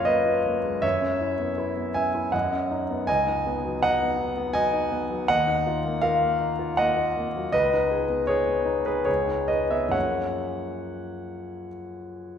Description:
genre	classical, impressionist solo piano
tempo	66-83 BPM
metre	3/4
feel	rubato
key	F# major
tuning	A4 = 440 Hz
part	warm concert grand piano	solo	0.0-12.4 s	C#2 to G#5	-23 LUFS	equal	none
room	wet scoring stage reverb, RT60 1.8 s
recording	heard from further back in the room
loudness	-22 LUFS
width	side -8 dB against mid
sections	0.0-12.4 A section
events	none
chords	0.0 F#maj9; 0.8 F#9sus4; 2.3 Badd9/F#; 3.1 C#9sus4; 5.3 D#madd9; 7.5 C#sus2; 9.9 F#maj9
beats	0.07 | 0.83 1.59 2.34 | 3.08 3.82 4.54 | 5.28 6.03 6.77 | 7.52 8.28 9.08 | 9.95 10.84 11.71

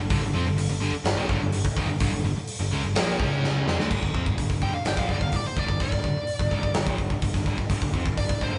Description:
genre	hard rock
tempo	126 BPM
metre	4/4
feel	straight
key	unclear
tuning	A4 = 440 Hz
part	crunchy overdriven guitar	riff	0.0-8.6 s	G2 to C#4	-34 LUFS	equal	spring reverb
part	distorted electric guitar	riff	0.0-3.9 s	G2 to C#4	-36 LUFS	equal	distortion
part	tight distorted guitar	riff	0.0-8.6 s	G2 to C#4	-36 LUFS	equal	distortion
part	overdriven picked electric bass	bass	0.0-8.6 s	G1 to F2	-32 LUFS	equal	none
part	tonewheel organ	sustained chords	0.1-3.9 s	G3 to Eb5	-43 LUFS	equal	none
part	big rock drum kit	drums	0.1-8.5 s	crash cymbal, hi-hat, kick drum, snare drum	-29 LUFS	equal	none
part	smooth overdriven lead guitar	melody	4.6-8.6 s	C5 to G5	-32 LUFS	equal	none
room	light reverb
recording	band playing live in one room, nothing above 10.4 kHz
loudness	-25 LUFS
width	mono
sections	0.0-3.9 A section; 3.9-8.6 B section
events	drum fill 3.4-3.9; lead electric guitar solo 3.9-8.6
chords	0.0 Gm; 3.2 C#5; 3.7 G5; 3.9 Gm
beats	| 0.11 0.59 1.06 1.53 | 2.01 2.48 2.96 3.43 | 3.90 4.38 4.85 5.33 | 5.80 6.28 6.75 7.23 | 7.70 8.18

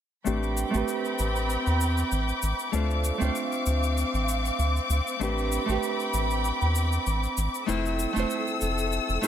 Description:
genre	sunset chillout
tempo	97 BPM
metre	4/4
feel	swing 55% on 16ths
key	A minor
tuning	A4 = 435 Hz
part	nylon-string guitar	accompaniment	0.2-9.3 s	A3 to C5	-30 LUFS	moving between left 5 dB and right 5 dB	auto-pan, low-pass filter, tape echo
part	clear studio string section	sustained chords	0.3-9.3 s	C4 to E6	-30 LUFS	left 1 dB	none
part	round analog bass	bass	0.3-9.2 s	F1 to E2	-27 LUFS	equal	none
part	cabasa	drums	0.3-9.3 s	none	-38 LUFS	left 4 dB	none
room	light reverb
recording	none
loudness	-24 LUFS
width	side -10 dB against mid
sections	0.3-9.3 A section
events	filter sweep on analog synth bass 0.3-9.3; filter sweep on nylon-string guitar 0.3-9.3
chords	0.3 Am11; 2.7 Dm7; 5.2 Am11; 7.7 Fmaj7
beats	| 0.26 0.88 1.50 2.12 | 2.74 3.35 3.97 4.59 | 5.21 5.83 6.45 7.07 | 7.68 8.30 8.92

